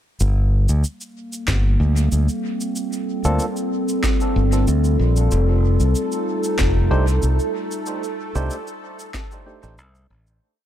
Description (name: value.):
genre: ambient dub.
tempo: 94 BPM.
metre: 4/4.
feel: straight.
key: G minor.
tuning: A4 = 440 Hz.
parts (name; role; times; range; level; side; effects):
warbly tape-like pad; sustained chords; 1.2-10.4 s; G3 to A4; -24 LUFS; equal; chorus, built-in reverb, vintage 12-bit sampler grit.
modern bright fingered electric bass; bass; 0.2-10.4 s; F1 to D2; -17 LUFS; equal; none.
electronic shaker and snare drum; drums; 0.2-10.4 s; none; -29 LUFS; equal; dub echo.
electronic kick drum; drums; 1.5-9.3 s; none; -24 LUFS; equal; overdrive.
barky tine electric piano; stabs; 3.2-9.8 s; A3 to C5; -29 LUFS; equal; slow stereo tremolo, dub echo.
bubbling stepped-filter texture; texture; 5.3-10.4 s; A3 to A4; -30 LUFS; right 2 dB; chorus, built-in reverb.
room: little or no reverb.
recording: none.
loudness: -17 LUFS.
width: side -11 dB against mid.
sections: 0.2-10.4 groove.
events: fade-out 7.0-10.4.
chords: 0.2 Gm11; 5.3 F9.